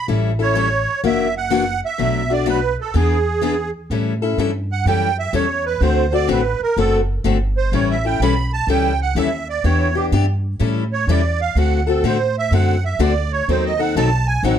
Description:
acoustic string swing (jazz manouche); 125 BPM; 4/4; swing 66% on 8ths; A mixolydian; A4 = 440 Hz
musette accordion; melody; 0.0-14.6 s; G4 to B5; -21 LUFS; right 6 dB; plate reverb
picked steel-string acoustic guitar; accompaniment; 0.1-14.6 s; B2 to A4; -20 LUFS; left 6 dB
upright bass; bass; 0.1-14.6 s; F#1 to A2; -20 LUFS; right 1 dB
moderate studio reverb, RT60 0.5 s; dark, warm production; -16 LUFS; side -9 dB against mid
0.0-3.9 A section; 3.9-14.6 B section
accordion solo 3.9-14.6
0.1 A7; 1.0 F#aug7; 2.0 Bm7; 2.9 E7; 3.9 A7; 5.8 D7; 7.7 A7; 9.6 Em7; 10.6 A7; 11.6 D7; 13.5 D#dim7

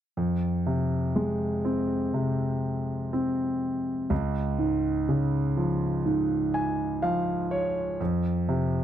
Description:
pop; 62 BPM; 4/4; straight; A4 = 440 Hz
clear concert grand piano; accompaniment; 0.2-8.8 s; Db2 to Ab5; -25 LUFS; equal
moderate booth ambience, RT60 0.2 s; dry, close 1970s-style studio recording; -25 LUFS; side -10 dB against mid
0.2-8.8 A section
grand piano fill 6.1-8.0
0.2 Fm; 4.1 Db; 8.0 F5

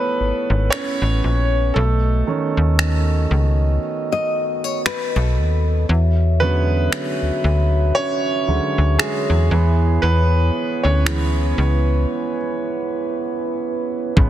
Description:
contemporary R&B; 58 BPM; 4/4; swing 58% on 16ths; A4 = 441 Hz
clear concert grand piano; accompaniment; 0.0-14.3 s; C#3 to C#5; -22 LUFS; right 3 dB
dark French horn section; sustained chords; 0.0-14.3 s; B3 to E5; -25 LUFS; right 1 dB
slap-like FM bass; bass; 0.2-14.3 s; G#1 to E2; -16 LUFS; equal
smooth R&B drum kit; drums; 0.7-14.3 s; finger snaps, kick drum; -22 LUFS; equal; soft clipping on snare
nylon-string guitar; arpeggios; 4.1-5.9 s; A4 to D#5; -24 LUFS; left 6 dB; tape echo
light reverb, small room ambience; dense, heavily limited modern master; -16 LUFS; side -12 dB against mid
0.0-14.3 A section
break 0.0-14.2; grand piano solo 0.0-14.3; drums muted 13.1-14.2
0.0 Amaj9; 1.8 B7; 5.9 E13; 9.5 C#m7

